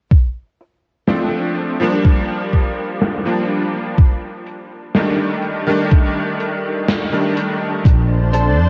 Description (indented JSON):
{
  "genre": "vaporwave",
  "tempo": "62 BPM",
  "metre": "4/4",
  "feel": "straight",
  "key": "Bb major",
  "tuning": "A4 = 439 Hz",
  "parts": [
    { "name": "electronic kick drum", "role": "drums", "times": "0.1-8.1 s", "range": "none", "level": "-14 LUFS", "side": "equal", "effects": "overdrive, vintage 12-bit sampler grit" },
    { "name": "gated 80s drum kit", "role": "drums", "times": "0.1-8.5 s", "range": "hi-hat, snare drum", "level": "-24 LUFS", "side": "equal", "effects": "low-pass filter on hats, vintage 12-bit sampler grit, low-pass filter on snare, low-pass filter on room" },
    { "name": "bright electric grand piano", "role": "accompaniment", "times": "1.1-7.8 s", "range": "Eb3 to D4", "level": "-21 LUFS", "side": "equal", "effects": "ensemble chorus, tape echo" },
    { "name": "lush unison pad", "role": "sustained chords", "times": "7.8-8.7 s", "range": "D4 to A5", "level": "-23 LUFS", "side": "equal", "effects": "chorus" },
    { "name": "mellow fretless electric bass", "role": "bass", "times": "7.9-8.7 s", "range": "Bb1 to F2", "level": "-17 LUFS", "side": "equal", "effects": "none" },
    { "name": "direct-recorded clean electric guitar", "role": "riff", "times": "8.3-8.6 s", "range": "C4 to A4", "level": "-23 LUFS", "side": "equal", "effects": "ensemble chorus, vintage 12-bit sampler grit" }
  ],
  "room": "moderate huge ambient reverb, RT60 4.5 s",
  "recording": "dreamy mix soaked in reverb, cassette tape",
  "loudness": "-17 LUFS",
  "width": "mono",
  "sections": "0.1-8.7 A section",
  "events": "filter sweep on drum 0.1-8.7",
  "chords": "0.1 Bbmaj9; 2.1 Bb6/F; 4.0 Ebmaj7#11; 7.9 Bbmaj9"
}